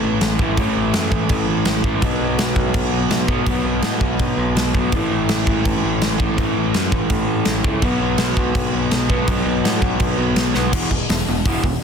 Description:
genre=punk rock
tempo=166 BPM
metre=4/4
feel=straight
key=unclear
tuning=A4 = 438 Hz
part: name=raw garage guitar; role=riff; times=0.0-11.8 s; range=E2 to B3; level=-20 LUFS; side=equal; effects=overdrive
part: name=modern bright picked electric bass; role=bass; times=0.0-11.8 s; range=E1 to A2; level=-23 LUFS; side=equal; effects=none
part: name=big rock drum kit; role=drums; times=0.2-11.7 s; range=crash cymbal, hi-hat, kick drum, snare drum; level=-20 LUFS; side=equal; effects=none
room=light reverb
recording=dense, heavily limited modern master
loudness=-16 LUFS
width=side -6 dB against mid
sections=0.0-10.7 A section; 10.7-11.8 B section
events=drum fill 10.5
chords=0.0 A5; 2.0 B5; 4.9 A5; 7.8 B5; 10.7 E5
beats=0.21 | 0.57 0.94 1.30 1.67 | 2.03 2.39 2.75 3.12 | 3.48 3.85 4.21 4.57 | 4.93 5.30 5.66 6.02 | 6.38 6.75 7.11 7.47 | 7.83 8.20 8.56 8.92 | 9.28 9.64 10.01 10.37 | 10.73 11.09 11.45

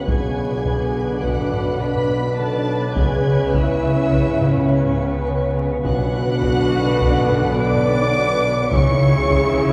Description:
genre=cinematic, suspense film score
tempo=104 BPM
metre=5/4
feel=straight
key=unclear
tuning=A4 = 438 Hz
part: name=rich studio violin section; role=melody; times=0.0-9.7 s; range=E6 to D7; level=-34 LUFS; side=equal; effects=none
part: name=rich studio violin section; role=second line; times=0.0-9.7 s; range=E5 to D6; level=-31 LUFS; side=equal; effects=none
part: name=dark studio viola section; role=accompaniment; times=0.0-9.7 s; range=C#4 to B4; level=-27 LUFS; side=equal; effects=none
part: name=bright trombone section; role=sustained chords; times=0.0-9.7 s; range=C#3 to C#4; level=-29 LUFS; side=equal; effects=none
part: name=mellow French horn section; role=sustained chords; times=0.0-9.7 s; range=E4 to D5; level=-26 LUFS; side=equal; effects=none
part: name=twinkling granular texture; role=sustained chords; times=0.0-9.7 s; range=G#4 to G#5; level=-34 LUFS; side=equal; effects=built-in reverb
part: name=concert harp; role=riff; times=0.0-9.7 s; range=B2 to C#4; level=-26 LUFS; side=equal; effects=none
part: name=dark studio double bass section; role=bass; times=0.0-9.7 s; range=B1 to C#2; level=-28 LUFS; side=equal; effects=none
part: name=rich studio cello section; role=bass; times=0.0-9.7 s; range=B2 to C#3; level=-29 LUFS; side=equal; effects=none
part: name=overtone-sweeping drone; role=drone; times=0.0-9.7 s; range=B1 to C#2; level=-33 LUFS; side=equal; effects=chorus, built-in reverb, phaser
part: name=taiko ensemble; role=drums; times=0.1-9.7 s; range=none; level=-27 LUFS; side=equal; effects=none
part: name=warm studio violin section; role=texture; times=0.1-5.5 s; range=B5 to F#6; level=-41 LUFS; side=equal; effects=none
room=wet scoring stage reverb, RT60 1.6 s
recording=heard from further back in the room, vinyl crackle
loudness=-19 LUFS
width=mono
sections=0.0-9.7 A section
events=none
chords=0.1 Bm; 3.0 C#m7; 5.8 Bm; 8.7 C#m7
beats=| 0.08 0.66 1.23 1.81 2.39 | 2.96 3.54 4.12 4.70 5.27 | 5.85 6.42 7.00 7.58 8.16 | 8.73 9.31

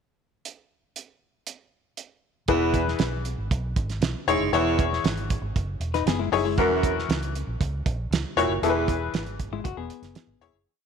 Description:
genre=uptempo 1960s-style soul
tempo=117 BPM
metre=4/4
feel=straight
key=E major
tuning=A4 = 439 Hz
part: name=cloth-damped thuddy drum kit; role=drums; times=0.5-10.5 s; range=hi-hat, kick drum, snare drum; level=-28 LUFS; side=right 4 dB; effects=none
part: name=bright upright piano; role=accompaniment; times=2.5-10.5 s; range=E3 to C#5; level=-25 LUFS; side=left 10 dB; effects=none
part: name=warm baritone saxophone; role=riff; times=2.5-9.0 s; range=E2 to A#2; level=-27 LUFS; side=right 11 dB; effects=none
part: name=vintage muted fingered electric bass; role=bass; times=2.5-10.6 s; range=E1 to C#2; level=-30 LUFS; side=right 1 dB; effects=none
part: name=hollow-body jazz guitar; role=riff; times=5.9-10.5 s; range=F#3 to B4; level=-30 LUFS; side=left 12 dB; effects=none
room=moderate echo chamber reverb, RT60 2.6 s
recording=1960s-style stereo with parts hard left and right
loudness=-23 LUFS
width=side -6 dB against mid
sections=0.4-2.5 pickup bar; 2.5-10.7 A section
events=fade-out 8.6-10.7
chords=0.4 N.C.; 2.5 E; 6.6 F#7/E; 8.6 E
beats=| 0.44 0.95 1.46 1.97 | 2.48 3.00 3.51 4.02 | 4.53 5.04 5.55 6.07 | 6.58 7.09 7.60 8.11 | 8.62 9.14 9.65 10.16

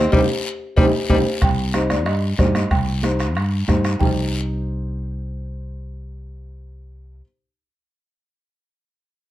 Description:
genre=latin, cumbia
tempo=185 BPM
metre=4/4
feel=straight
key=C minor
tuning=A4 = 440 Hz
part: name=folk marimba with soft mallets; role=melody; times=0.0-7.2 s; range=G4 to G5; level=-23 LUFS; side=equal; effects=none
part: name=clear tenor saxophone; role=second line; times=0.0-1.2 s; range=G3 to C4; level=-26 LUFS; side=left 4 dB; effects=none
part: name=dark upright piano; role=accompaniment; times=0.0-7.2 s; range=Eb4 to D5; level=-25 LUFS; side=left 1 dB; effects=none
part: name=fretless electric bass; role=bass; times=0.0-7.2 s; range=C2 to G2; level=-23 LUFS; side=equal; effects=none
part: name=bombo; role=percussion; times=0.1-4.1 s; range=none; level=-20 LUFS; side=right 1 dB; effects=none
part: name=congas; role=percussion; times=0.1-4.1 s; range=none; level=-27 LUFS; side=right 2 dB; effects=none
part: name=guiro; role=percussion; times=0.1-4.1 s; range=none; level=-33 LUFS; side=left 5 dB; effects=none
part: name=timbales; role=percussion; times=0.1-4.1 s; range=none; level=-32 LUFS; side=right 2 dB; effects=none
room=light reverb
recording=dark, warm production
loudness=-17 LUFS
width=side -14 dB against mid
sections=0.0-1.4 A section; 1.4-4.0 B section; 4.0-6.6 C section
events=drum fill 0.1-1.4; band accent 0.1-1.4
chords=0.0 Cm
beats=| 0.13 0.45 0.77 1.10 | 1.42 1.74 2.06 2.39 | 2.71 3.04 3.36 3.68 | 4.01 4.33 4.66 4.98 | 5.30 5.63 5.95 6.27

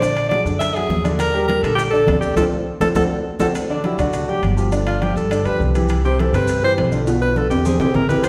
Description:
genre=Afro-Cuban jazz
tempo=204 BPM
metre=4/4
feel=straight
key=G major from 3.5 s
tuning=A4 = 440 Hz
part: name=bright alto saxophone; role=melody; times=0.0-8.3 s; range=D4 to E5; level=-23 LUFS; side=equal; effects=none
part: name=warm grand piano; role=accompaniment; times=0.0-8.3 s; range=B2 to D5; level=-25 LUFS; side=equal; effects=none
part: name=upright bass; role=bass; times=0.0-8.3 s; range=G1 to G2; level=-25 LUFS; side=equal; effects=none
part: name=bongos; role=percussion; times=0.0-3.5, 8.2-8.3 s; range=none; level=-32 LUFS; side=equal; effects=none
part: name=congas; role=percussion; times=0.0-8.3 s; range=none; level=-28 LUFS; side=equal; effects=none
part: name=maracas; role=percussion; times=0.0-8.3 s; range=none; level=-42 LUFS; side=equal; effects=none
part: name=timbales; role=percussion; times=0.0-8.3 s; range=none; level=-29 LUFS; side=equal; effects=none
room=wet recital hall reverb, RT60 1.3 s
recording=recorded in a church or concert hall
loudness=-18 LUFS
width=mono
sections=0.0-3.5 A section; 3.5-8.3 B section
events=band accent 2.4-3.5; drum fill 2.7-3.5, 7.1-8.2; alto saxophone solo 3.5-8.3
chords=0.0 Bbaug7; 1.2 Ebmaj7; 2.4 Dm7; 3.0 D7; 3.5 G5; 5.9 Cadd9; 7.1 Bdim; 7.7 Eaug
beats=| 0.02 0.32 0.61 0.90 | 1.20 1.49 1.78 2.08 | 2.37 2.67 2.96 3.25 | 3.55 3.84 4.13 4.43 | 4.72 5.01 5.31 5.60 | 5.90 6.19 6.48 6.78 | 7.07 7.36 7.66 7.95 | 8.24

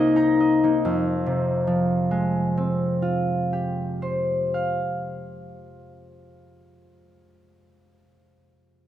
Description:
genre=classical, solo harp piece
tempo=47 BPM (dotted quarters)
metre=6/8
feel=rubato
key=F minor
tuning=A4 = 444 Hz
part: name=concert harp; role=solo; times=0.0-7.4 s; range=C2 to Bb5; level=-21 LUFS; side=left 1 dB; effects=none
room=moderate scoring stage reverb, RT60 1.8 s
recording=none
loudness=-21 LUFS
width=side -11 dB against mid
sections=0.9-6.0 A section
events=none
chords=0.0 Cm7; 0.9 Fmadd9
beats=| 0.85 2.12 | 3.40 4.69

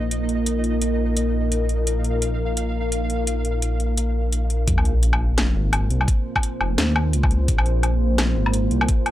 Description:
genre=half-time drum and bass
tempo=171 BPM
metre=4/4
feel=swing 58% on 16ths, half-time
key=unclear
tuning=A4 = 436 Hz
part: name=deep dark ambient pad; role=sustained chords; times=0.0-9.1 s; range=Bb3 to C5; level=-26 LUFS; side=equal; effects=chorus, built-in reverb, sidechain pumping
part: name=dark detuned saw bass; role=bass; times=0.0-8.9 s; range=F1 to Eb2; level=-21 LUFS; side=equal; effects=none
part: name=pulsing gated texture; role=texture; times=0.0-4.7 s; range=Eb4 to F5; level=-34 LUFS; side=right 2 dB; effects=chorus, built-in reverb
part: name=drum and bass drum kit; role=drums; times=0.1-9.1 s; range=hi-hat, snare drum, woodblock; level=-24 LUFS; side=left 1 dB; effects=none
part: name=electronic kick drum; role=drums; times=4.7-9.0 s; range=none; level=-20 LUFS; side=equal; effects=none
part: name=sub drop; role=sound effects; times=4.7-6.1 s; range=none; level=-25 LUFS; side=equal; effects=none
room=little or no reverb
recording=dry, gritty hardware recording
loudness=-19 LUFS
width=side -14 dB against mid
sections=0.0-4.7 A section; 4.7-9.1 B section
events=drop 4.7-9.1; impact 4.7-6.1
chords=0.0 Bb5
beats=0.11 | 0.47 0.82 1.17 1.52 | 1.87 2.22 2.57 2.92 | 3.27 3.62 3.97 4.32 | 4.67 5.03 5.38 5.73 | 6.08 6.43 6.78 7.13 | 7.48 7.83 8.18 8.54 | 8.89

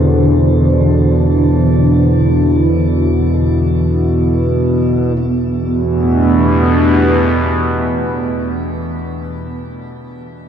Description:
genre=dark ambient drone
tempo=free time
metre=none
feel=none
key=unclear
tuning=A4 = 440 Hz
part: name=dark analog pad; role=sustained chords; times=0.0-9.5 s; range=E3 to C5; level=-17 LUFS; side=right 1 dB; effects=chorus, phaser, shimmer reverb
part: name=gamelan-type bronze metallophone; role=arpeggios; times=0.0-9.5 s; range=D3 to A4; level=-22 LUFS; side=equal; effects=tape echo, shimmer reverb
part: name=analog drone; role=drone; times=0.0-9.5 s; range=E2 to B2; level=-14 LUFS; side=equal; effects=chorus
part: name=bronze singing bowl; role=texture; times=0.0-5.2 s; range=none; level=barely audible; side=none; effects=none
room=wet cathedral reverb, RT60 7.5 s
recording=none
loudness=-11 LUFS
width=side -8 dB against mid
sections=0.0-5.2 A section; 5.2-8.8 B section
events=none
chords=0.0 F6/E (rootless); 5.2 Em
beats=free time

